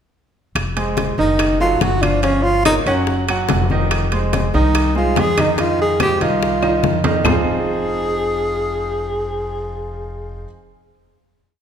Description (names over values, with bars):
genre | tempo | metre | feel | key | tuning
Afro-Cuban jazz | 144 BPM | 4/4 | straight | F minor | A4 = 438 Hz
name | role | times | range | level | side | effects
upright bass | bass | 0.6-10.4 s | F1 to F2 | -22 LUFS | equal | none
bongos | percussion | 0.6-7.4 s | none | -27 LUFS | left 7 dB | none
claves | percussion | 0.6-7.3 s | none | -30 LUFS | left 6 dB | none
congas | percussion | 0.6-7.3 s | none | -26 LUFS | left 3 dB | none
timbales | percussion | 0.6-7.4 s | none | -26 LUFS | right 5 dB | none
clear baby grand piano | accompaniment | 0.8-10.5 s | Eb3 to Gb5 | -22 LUFS | right 2 dB | none
breathy tenor saxophone | melody | 1.2-10.5 s | Db4 to Ab4 | -19 LUFS | equal | none
room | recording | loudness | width
moderate scoring stage reverb, RT60 1.9 s | recorded in a church or concert hall | -15 LUFS | side -8 dB against mid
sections
0.6-7.3 A section; 7.3-10.6 final chord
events
drum fill 6.6-7.3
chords
0.6 Fm7; 1.4 F13b9/Gb; 2.2 Gm7b5; 3.1 Ebm9; 3.9 Fm7